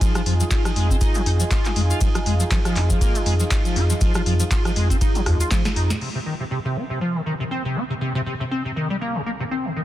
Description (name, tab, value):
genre	acid house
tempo	120 BPM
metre	4/4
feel	swing 56% on 16ths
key	C minor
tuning	A4 = 441 Hz
part	dark analog pad	sustained chords	0.0-9.8 s	C3 to Bb4	-30 LUFS	right 1 dB	chorus, sidechain pumping
part	liquid acid bass	riff	0.0-9.8 s	F2 to F4	-25 LUFS	equal	tube saturation, wide subtle chorus, sidechain pumping, tape echo
part	booming analog drum machine	drums	0.0-6.1 s	crash cymbal, handclaps, hi-hat, ride cymbal, rim click, snare drum	-28 LUFS	equal	none
part	electronic kick drum	drums	0.0-5.6 s	none	-21 LUFS	equal	none
part	cabasa	percussion	0.0-6.0 s	none	-32 LUFS	left 4 dB	none
part	warm sub bass	bass	0.3-5.9 s	Eb2 to F2	-20 LUFS	equal	sidechain pumping
room	light reverb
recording	dense, heavily limited modern master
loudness	-19 LUFS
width	side -14 dB against mid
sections	0.0-6.0 A section; 6.0-9.8 B section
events	drop 0.0-6.0; drum fill 5.5-6.0; filter sweep on analog synth pad 6.0-9.8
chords	0.0 Fm7; 6.0 Cm7